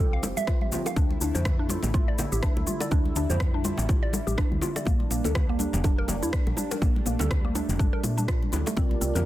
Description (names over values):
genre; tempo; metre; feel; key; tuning
afro house; 123 BPM; 4/4; swing 57% on 16ths; unclear; A4 = 440 Hz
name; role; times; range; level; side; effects
warm analog pad; sustained chords; 0.0-9.3 s; C3 to G4; -34 LUFS; right 1 dB; chorus, sidechain pumping
mallet-like synth pluck; arpeggios; 0.0-9.2 s; A3 to F5; -32 LUFS; equal; chorus, phaser, sidechain pumping, digital delay
woody FM bass; bass; 0.0-9.3 s; F1 to Bb2; -29 LUFS; equal; sidechain pumping
electronic shaker and rim click; drums; 0.2-9.2 s; none; -35 LUFS; left 2 dB; none
bongos; percussion; 0.2-9.1 s; none; -38 LUFS; right 1 dB; none
congas; percussion; 0.2-9.2 s; none; -35 LUFS; left 2 dB; none
electronic kick drum; drums; 0.5-8.9 s; none; -25 LUFS; equal; none
mellow tonewheel organ; stabs; 8.8-9.3 s; C4 to D5; -30 LUFS; right 2 dB; fast rotary speaker, sidechain pumping
room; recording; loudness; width
light reverb; dense, heavily limited modern master; -23 LUFS; side -14 dB against mid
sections
0.0-9.3 A section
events
filter sweep on synth pluck 0.0-9.3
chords
0.0 Fmaj9; 1.0 Dmadd9; 4.9 Bb6